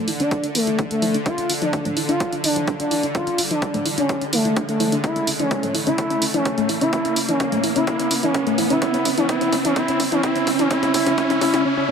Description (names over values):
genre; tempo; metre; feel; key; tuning
melodic techno; 127 BPM; 4/4; straight; D harmonic minor; A4 = 440 Hz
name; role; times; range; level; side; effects
expressive portamento lead; melody; 0.0-11.6 s; A3 to F4; -22 LUFS; equal; chorus, sidechain pumping, dub echo
bowed-like drone; drone; 0.0-11.7 s; D3; -32 LUFS; right 1 dB; built-in reverb, sidechain pumping
riser; sound effects; 0.5-11.9 s; none; -27 LUFS; right 1 dB; none
soft round pluck; arpeggios; 0.1-11.9 s; A3 to A4; -24 LUFS; left 1 dB; chorus, sidechain pumping, dub echo
punchy analog drum machine; drums; 0.1-11.6 s; congas, hi-hat, toms; -26 LUFS; equal; high-pass filter on hats, high-pass filter on perc, high-pass filter on toms
electronic kick drum; drums; 0.3-11.3 s; none; -26 LUFS; equal; high-pass filter on kick
room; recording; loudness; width
moderate huge ambient reverb, RT60 8.4 s; none; -18 LUFS; side -6 dB against mid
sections
0.0-11.9 A section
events
build-up 0.0-11.9; filter sweep on synth arpeggio sound 0.0-11.9; riser 0.5-11.9; drum fill 5.0-11.7; break 11.7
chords
0.0 Dm; 5.0 A; 8.8 Dsus2